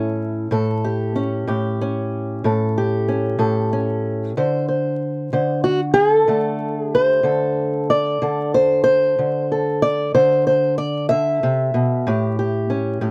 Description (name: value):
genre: acoustic country blues, solo or duo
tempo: 62 BPM (dotted quarters)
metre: 12/8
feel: straight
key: unclear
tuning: A4 = 440 Hz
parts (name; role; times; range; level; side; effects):
- fingerpicked old ladder-braced acoustic guitar; solo; 0.0-13.1 s; A2 to E5; -20 LUFS; equal; none
room: little or no reverb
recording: close, detailed microphones, vinyl crackle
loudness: -19 LUFS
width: mono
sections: 0.0-13.1 A section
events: none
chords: 0.0 A7; 4.4 D5; 12.1 A7